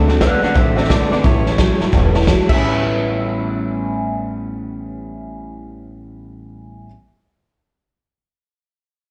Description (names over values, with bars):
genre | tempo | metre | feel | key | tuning
rockabilly | 174 BPM | 4/4 | swing 63% on 8ths | A mixolydian | A4 = 439 Hz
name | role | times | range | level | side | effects
picked steel-string acoustic guitar | accompaniment | 0.0-6.9 s | A2 to F#4 | -29 LUFS | equal | none
electric guitar through a small old amp | riff | 0.0-6.9 s | A2 to B4 | -24 LUFS | equal | phaser, slapback echo
upright bass | bass | 0.0-6.9 s | E1 to D2 | -23 LUFS | equal | none
honky-tonk upright piano | accompaniment | 0.1-6.9 s | C#5 to A5 | -31 LUFS | equal | slapback echo
raw garage drum kit | drums | 0.1-2.6 s | crash cymbal, hi-hat, kick drum, snare drum | -21 LUFS | equal | none
electric guitar through a small old amp | melody | 0.2-6.9 s | A4 to F#5 | -25 LUFS | equal | slapback echo, tape echo
room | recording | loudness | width
little or no reverb | live gig heard through the venue's PA, club reverb | -17 LUFS | mono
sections
0.0-2.6 A section; 2.6-5.4 B section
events
honky-tonk piano fill 1.6-2.6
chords
0.0 D7; 1.2 A7; 2.5 A9